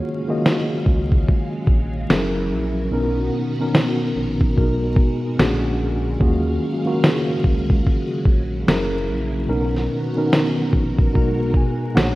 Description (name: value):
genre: lo-fi hip hop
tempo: 73 BPM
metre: 4/4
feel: swing 63% on 16ths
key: Eb minor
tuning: A4 = 437 Hz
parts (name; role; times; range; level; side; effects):
- mellow tine electric piano; accompaniment; 0.0-12.2 s; Bb2 to Ab5; -22 LUFS; equal; medium stereo tremolo, low-pass filter
- string machine, full ensemble; sustained chords; 0.0-12.2 s; Cb3 to F5; -28 LUFS; equal; phaser, ensemble chorus, low-pass filter
- lo-fi sampler-style drum kit; drums; 0.5-12.2 s; kick drum, snare drum; -18 LUFS; equal; none
- smooth synth bass; bass; 0.9-12.2 s; Gb1 to Eb2; -25 LUFS; equal; none
room: light reverb, digital ambience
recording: rough home demo mix, vinyl crackle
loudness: -17 LUFS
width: side -18 dB against mid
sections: 0.0-12.2 A section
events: break 0.0-12.2; tine electric piano fill 11.1-12.2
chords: 0.0 Ebm11; 2.1 Gb7; 2.9 Bmaj7; 4.6 Abm9/Cb; 5.4 Bb7alt; 6.2 Ebm11; 8.7 Gb7; 9.5 Bmaj7; 11.1 Abm9/Cb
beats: 0.45 1.27 2.10 | 2.92 3.74 4.56 5.38 | 6.20 7.03 7.85 8.67 | 9.49 10.31 11.14 11.96